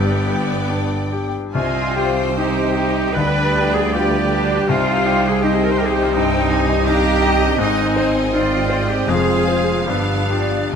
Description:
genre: classical, romantic movement for piano and orchestra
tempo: 67-86 BPM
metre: 4/4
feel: rubato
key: C minor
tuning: A4 = 441 Hz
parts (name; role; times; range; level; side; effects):
- clear concert grand piano; melody; 0.0-10.8 s; C2 to C5; -21 LUFS; left 4 dB; none
- warm symphonic violin section; melody; 0.0-10.7 s; F5 to Bb5; -30 LUFS; left 1 dB; none
- bright flute section; second line; 0.0-10.7 s; B4 to G5; -26 LUFS; right 1 dB; none
- bright symphonic violin section; second line; 0.0-10.7 s; B4 to F5; -28 LUFS; left 3 dB; none
- warm oboe; second line; 0.0-10.7 s; B3 to C5; -27 LUFS; right 3 dB; none
- rich studio viola section; accompaniment; 0.0-10.8 s; B3 to F4; -27 LUFS; right 2 dB; none
- mellow French horn section; sustained chords; 0.0-10.8 s; B3 to C5; -26 LUFS; left 7 dB; none
- mellow trombone section; sustained chords; 0.0-10.8 s; D3 to Ab3; -27 LUFS; right 5 dB; none
- clear symphonic double bass section; bass; 0.0-10.7 s; F1 to D2; -24 LUFS; right 3 dB; none
- rich studio cello section; bass; 0.0-10.7 s; B3 to C5; -23 LUFS; right 2 dB; none
room: light reverb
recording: close, detailed microphones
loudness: -15 LUFS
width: side -7 dB against mid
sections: 0.0-10.8 A section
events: none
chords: 0.0 G; 1.5 Cm; 3.2 G7/D; 4.7 Cm; 7.6 Ab; 9.1 Fm; 9.9 G7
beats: 0.69 | 1.54 2.36 3.15 3.94 | 4.69 5.44 6.15 6.86 | 7.60 8.33 9.08 9.88 | 10.74

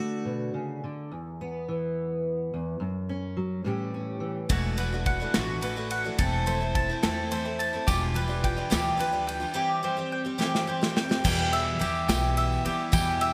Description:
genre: indie folk with a building arrangement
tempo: 71 BPM (dotted quarters)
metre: 6/8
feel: straight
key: E dorian, E minor from 4.5 s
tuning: A4 = 441 Hz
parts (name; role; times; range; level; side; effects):
- fingerpicked steel-string acoustic guitar; accompaniment; 0.0-4.5 s; E2 to G4; -32 LUFS; equal; lush chorus
- picked twelve-string acoustic guitar; accompaniment; 4.5-13.3 s; E2 to G4; -33 LUFS; equal; none
- mandolin; arpeggios; 4.5-13.3 s; F#4 to A5; -31 LUFS; equal; digital delay
- upright bass; bass; 4.5-13.3 s; E1 to E3; -34 LUFS; equal; none
- natural country drum kit; drums; 4.5-13.3 s; crash cymbal, kick drum, ride cymbal, snare drum; -32 LUFS; equal; none
- tambourine; percussion; 7.9-13.3 s; none; -43 LUFS; equal; none
room: moderate plate reverb, RT60 1.9 s, small room ambience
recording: bright 1980s-style digital production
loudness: -28 LUFS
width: mono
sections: 0.0-4.5 A section; 4.5-11.2 B section; 11.2-13.3 C section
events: drum fill 10.4-11.2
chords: 0.0 D; 1.1 E5; 2.8 F#5; 3.7 A7; 4.5 D6/E; 6.2 Am/E; 7.9 G7/E; 9.6 C/E; 11.2 Em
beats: 0.26 | 1.11 1.96 | 2.81 3.65 | 4.50 5.34 | 6.19 7.03 | 7.88 8.72 | 9.56 10.40 | 11.25 12.09 | 12.93

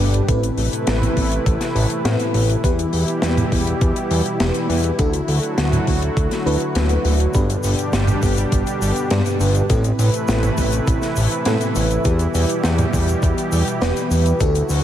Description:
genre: synthwave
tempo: 102 BPM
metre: 4/4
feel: straight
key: A dorian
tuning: A4 = 440 Hz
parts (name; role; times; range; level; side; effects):
- warm analog pad; sustained chords; 0.0-14.8 s; B2 to B4; -23 LUFS; right 1 dB; chorus
- FM electric piano with soft pad layer; stabs; 0.0-14.8 s; G2 to B4; -24 LUFS; left 1 dB; chorus, phaser, cassette tape, ping-pong delay
- fat analog bass; bass; 0.0-14.8 s; D1 to A2; -19 LUFS; equal; none
- deep reggae drum kit; drums; 0.1-14.8 s; hi-hat, shaker, snare drum, toms; -24 LUFS; equal; gated reverb
- electronic kick drum; drums; 0.3-14.5 s; none; -21 LUFS; equal; overdrive
room: light reverb, studio reverb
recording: none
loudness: -16 LUFS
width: side -11 dB against mid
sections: 0.0-14.8 A section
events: none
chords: 0.3 Amadd9; 2.6 Em; 5.0 Dadd9; 7.3 G; 9.7 Amadd9; 12.1 Em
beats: | 0.29 0.87 1.46 2.05 | 2.64 3.23 3.81 4.40 | 4.99 5.58 6.17 6.76 | 7.34 7.93 8.52 9.11 | 9.70 10.29 10.87 11.46 | 12.05 12.64 13.23 13.81 | 14.40

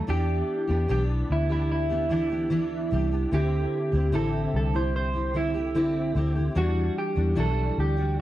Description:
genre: indie pop, bedroom pop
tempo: 74 BPM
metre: 4/4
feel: straight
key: E minor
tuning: A4 = 440 Hz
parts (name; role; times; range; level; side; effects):
- electric guitar through a small old amp; melody; 0.0-8.2 s; E4 to C5; -28 LUFS; right 2 dB; wide subtle chorus, slapback echo
- fingerpicked steel-string acoustic guitar; accompaniment; 0.0-8.2 s; D3 to G4; -29 LUFS; left 2 dB; ensemble chorus, vibrato effect
- vintage muted fingered electric bass; bass; 0.1-8.2 s; A1 to E2; -26 LUFS; equal; none
room: light reverb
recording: dry, close 1970s-style studio recording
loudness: -23 LUFS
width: side -14 dB against mid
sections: 0.0-8.2 A section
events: none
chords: 0.1 Em7; 3.3 D9sus4; 6.6 Em9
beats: | 0.09 0.90 1.71 2.52 | 3.33 4.13 4.94 5.75 | 6.56 7.37 8.18

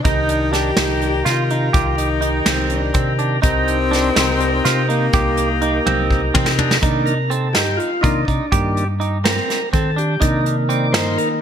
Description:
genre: progressive instrumental, band music in an uneven meter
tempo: 248 BPM (eighths)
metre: 7/8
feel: straight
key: C minor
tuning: A4 = 439 Hz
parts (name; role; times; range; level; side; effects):
- mellow alto saxophone; second line; 0.0-6.5 s; Bb3 to G4; -23 LUFS; left 5 dB; none
- tonewheel organ; accompaniment; 0.0-11.4 s; Eb3 to D5; -21 LUFS; left 1 dB; slow rotary speaker
- clean electric guitar; arpeggios; 0.0-11.3 s; C4 to G4; -23 LUFS; right 5 dB; wide subtle chorus, digital delay
- soft brush drum kit; drums; 0.0-11.3 s; hi-hat, kick drum, snare drum, toms; -20 LUFS; equal; gated reverb
- fingered electric bass; bass; 0.1-11.2 s; C2 to Eb3; -21 LUFS; equal; none
room: light reverb, studio ambience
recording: bright 1980s-style digital production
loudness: -15 LUFS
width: side -8 dB against mid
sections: 0.0-6.8 A section; 6.8-11.4 B section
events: drum fill 5.9-6.8; tonewheel organ solo 6.8-11.4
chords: 0.1 Eb/C; 6.8 Cm9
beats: | 0.05 0.29 0.53 0.78 1.02 1.26 1.50 | 1.74 1.99 2.23 2.47 2.71 2.95 3.20 | 3.44 3.68 3.92 4.16 4.41 4.65 4.89 | 5.13 5.37 5.62 5.86 6.10 6.34 6.58 | 6.82 7.07 7.31 7.55 7.79 8.03 8.28 | 8.52 8.76 9.00 9.24 9.48 9.73 9.97 | 10.21 10.45 10.69 10.94 11.18

